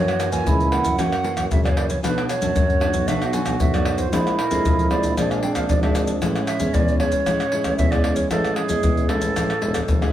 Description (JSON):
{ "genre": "samba and choro", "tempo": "115 BPM", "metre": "4/4", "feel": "straight", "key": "A major", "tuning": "A4 = 440 Hz", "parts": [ { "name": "wooden flute", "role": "melody", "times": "0.0-10.1 s", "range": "G#4 to Ab5", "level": "-25 LUFS", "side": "right 2 dB", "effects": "none" }, { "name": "breathy trombone", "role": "second line", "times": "0.0-9.4 s", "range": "C#4 to F#4", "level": "-27 LUFS", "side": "right 3 dB", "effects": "none" }, { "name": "nylon-string guitar", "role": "accompaniment", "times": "0.0-10.1 s", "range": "F#2 to E4", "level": "-26 LUFS", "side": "left 1 dB", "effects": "none" }, { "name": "warm tuba", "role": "bass", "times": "0.0-10.1 s", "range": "E1 to F#2", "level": "-26 LUFS", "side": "equal", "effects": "none" }, { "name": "maracas, pandeiro, tamborim and surdo", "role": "percussion", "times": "0.1-10.1 s", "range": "none", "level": "-22 LUFS", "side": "left 1 dB", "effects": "none" } ], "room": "wet studio reverb, RT60 0.8 s", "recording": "heard from further back in the room", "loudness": "-18 LUFS", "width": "side -12 dB against mid", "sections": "0.0-10.1 A section", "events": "none", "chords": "0.0 F#7; 2.0 Bm7; 4.1 Bb9; 6.2 Amaj7", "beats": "0.46 0.99 1.51 | 2.03 2.56 3.08 3.60 | 4.12 4.65 5.17 5.69 | 6.22 6.74 7.26 7.79 | 8.31 8.83 9.36 9.88" }